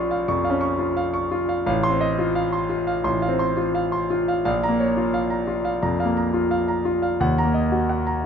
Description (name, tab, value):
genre	classical, romantic character piece for solo piano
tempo	86 BPM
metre	4/4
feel	rubato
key	Bb minor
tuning	A4 = 441 Hz
part	bright concert grand piano	solo	0.0-8.3 s	A1 to Db6	-20 LUFS	equal	none
room	moderate large studio reverb, RT60 0.9 s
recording	none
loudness	-20 LUFS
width	side -7 dB against mid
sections	0.0-8.3 A section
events	none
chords	0.0 Bbm; 1.7 F7/A; 4.4 Bbm; 7.2 Ebm